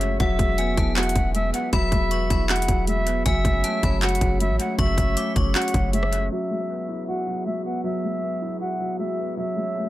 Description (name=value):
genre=hip hop, trap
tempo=157 BPM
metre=4/4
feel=half-time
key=unclear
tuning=A4 = 437 Hz
part: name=reedy silver concert flute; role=melody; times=0.0-9.9 s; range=E5 to F#5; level=-28 LUFS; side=equal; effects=dub echo
part: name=dark concert grand piano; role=accompaniment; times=0.0-9.9 s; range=F#3 to F#4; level=-28 LUFS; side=left 1 dB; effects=dub echo
part: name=glass harmonica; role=sustained chords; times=0.0-9.9 s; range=B3 to E5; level=-34 LUFS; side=right 1 dB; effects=stereo widening
part: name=warm 808-style bass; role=bass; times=0.0-6.3 s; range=E1 to A1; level=-24 LUFS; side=equal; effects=none
part: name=trap drum kit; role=drums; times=0.0-6.2 s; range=handclaps, hi-hat, kick drum, rim click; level=-24 LUFS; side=equal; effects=overdrive
part: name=metallic FM bell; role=second line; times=0.2-5.9 s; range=F#5 to D6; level=-32 LUFS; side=left 5 dB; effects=chorus, dub echo
room=small room reverb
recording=echo-heavy mix, low-pass filter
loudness=-21 LUFS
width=side -15 dB against mid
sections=0.0-6.3 A section; 6.3-9.9 B section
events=none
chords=0.2 Eadd9; 3.3 F#madd9; 6.3 Eadd9; 9.4 F#madd9